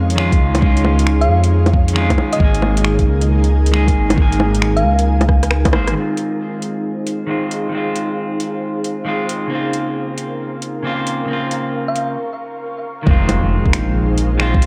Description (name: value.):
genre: future garage.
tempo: 135 BPM.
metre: 4/4.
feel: swing 65% on 16ths.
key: F minor.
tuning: A4 = 440 Hz.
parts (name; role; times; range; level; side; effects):
clean electric guitar; accompaniment; 0.0-14.7 s; Db3 to C5; -24 LUFS; equal; sidechain pumping, low-pass filter, tape echo.
ethereal airy pad; sustained chords; 0.0-14.7 s; Eb4 to Db6; -26 LUFS; equal; ensemble chorus, built-in reverb, vintage 12-bit sampler grit, sidechain pumping.
dark detuned saw bass; bass; 0.0-5.9, 13.1-14.7 s; F1 to F2; -18 LUFS; equal; tube saturation, sidechain pumping.
garage drum kit; drums; 0.1-14.7 s; bongos, finger snaps, hi-hat, rim click; -23 LUFS; equal; overdrive, vintage 12-bit sampler grit.
electronic kick drum; drums; 0.3-5.7, 13.1-14.6 s; none; -17 LUFS; equal; overdrive, vintage 12-bit sampler grit.
thumb-piano-like synth pluck; melody; 1.2-5.0, 11.9-12.1 s; Eb5 to F5; -26 LUFS; equal; chorus, tape echo.
impact; sound effects; 13.2-14.7 s; none; -26 LUFS; equal; none.
room: light reverb, digital ambience.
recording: none.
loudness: -17 LUFS.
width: mono.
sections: 0.0-6.0 A section; 6.0-13.1 B section; 13.1-14.7 A section.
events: drum fill 5.3-6.0; band accent 5.8; filter sweep on ambient pad 6.0-13.1; break 12.2-13.1; impact 13.1-14.7.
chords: 0.0 Dbadd9; 2.4 Absus2; 6.0 Fm7; 9.5 Bbmadd9; 13.1 Fm7.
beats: 0.18 | 0.62 1.07 1.51 1.95 | 2.40 2.84 3.29 3.73 | 4.18 4.62 5.07 5.51 | 5.95 6.40 6.84 7.29 | 7.73 8.18 8.62 9.07 | 9.51 9.95 10.40 10.84 | 11.29 11.73 12.18 12.62 | 13.07 13.51 13.95 14.40.